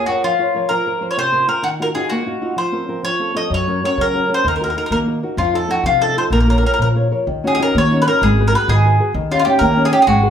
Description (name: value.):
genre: italian folk, Italian serenade.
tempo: 128 BPM (dotted quarters).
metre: 6/8.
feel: rubato.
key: Bb minor, Eb minor from 7.3 s.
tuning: A4 = 440 Hz.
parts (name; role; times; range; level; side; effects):
mandolin; melody; 0.0-10.3 s; F4 to Eb5; -17 LUFS; equal; none.
flamenco guitar; accompaniment; 0.0-10.3 s; C3 to F5; -19 LUFS; left 1 dB; none.
upright bass; bass; 3.5-10.3 s; Ab1 to Gb3; -19 LUFS; equal; none.
room: wet large studio reverb, RT60 0.9 s.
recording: band playing live in one room.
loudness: -14 LUFS.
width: side -8 dB against mid.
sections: 0.0-7.3 A section; 7.3-10.3 B section.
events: none.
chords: 0.0 Bbm; 0.7 Fsus4; 1.6 Ebmadd9; 2.6 Fsus4; 3.0 F; 3.5 Gb; 4.5 Ebm; 5.4 F7; 6.3 Bbm; 7.3 Ebm7; 8.2 Abm7; 9.1 Eb7.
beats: 0.23 | 0.69 1.16 | 1.63 2.10 | 2.56 3.04 | 3.51 3.99 | 4.45 4.91 | 5.38 5.84 | 6.31 6.79 | 7.27 7.75 | 8.22 8.69 | 9.15 9.61 | 10.08.